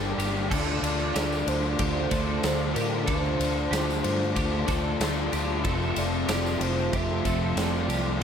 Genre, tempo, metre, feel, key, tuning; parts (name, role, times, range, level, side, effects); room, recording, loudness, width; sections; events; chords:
rock, shoegaze and dream pop; 94 BPM; 4/4; straight; A4 = 440 Hz
warm velvety synth lead; melody; 0.0-8.2 s; Bb4 to E5; -34 LUFS; equal; chorus, analog delay
hollow soft pad; sustained chords; 0.0-8.2 s; F4 to D6; -37 LUFS; right 1 dB; chorus
twelve-string electric guitar; arpeggios; 0.0-8.2 s; G4 to A4; -36 LUFS; right 8 dB; ensemble chorus, analog delay
clean electric guitar; riff; 0.0-8.2 s; G2 to F4; -36 LUFS; right 9 dB; reverse reverb
crunchy overdriven guitar; riff; 0.0-8.2 s; F2 to G4; -32 LUFS; left 10 dB; ensemble chorus
overdriven electric guitar; riff; 0.0-8.2 s; F2 to D4; -32 LUFS; equal
vintage muted fingered electric bass; bass; 0.0-8.2 s; F1 to A2; -31 LUFS; equal
tambourine; percussion; 0.0-8.0 s; -45 LUFS; right 9 dB
big rock drum kit; drums; 0.2-8.0 s; crash cymbal, kick drum, ride cymbal, snare drum; -30 LUFS; equal
light reverb, studio reverb; -24 LUFS; side -7 dB against mid
0.0-8.2 A section
0.0 Gm; 0.5 Dm; 5.6 Fmaj7